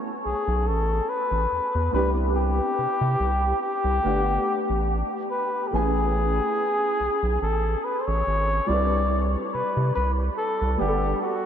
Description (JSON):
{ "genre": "R&B, neo-soul", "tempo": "71 BPM", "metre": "4/4", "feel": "swing 54% on 16ths", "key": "unclear", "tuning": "A4 = 440 Hz", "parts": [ { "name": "dark upright piano", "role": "accompaniment", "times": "0.0-11.5 s", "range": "G3 to G#5", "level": "-30 LUFS", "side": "equal", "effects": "ensemble chorus" }, { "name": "breathy flugelhorn", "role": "melody", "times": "0.2-11.5 s", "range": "F#4 to D5", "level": "-25 LUFS", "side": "left 2 dB", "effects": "none" }, { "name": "round analog bass", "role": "bass", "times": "0.3-11.1 s", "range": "G1 to C3", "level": "-25 LUFS", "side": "equal", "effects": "none" } ], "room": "wet huge ambient reverb, RT60 8.3 s", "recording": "dreamy mix soaked in reverb", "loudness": "-22 LUFS", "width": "side -9 dB against mid", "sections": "0.0-11.5 A section", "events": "none", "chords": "0.0 Amaj9; 1.9 Cmaj9; 4.0 Gmaj9; 5.7 Amaj9; 8.7 Cmaj9; 10.8 Gmaj9" }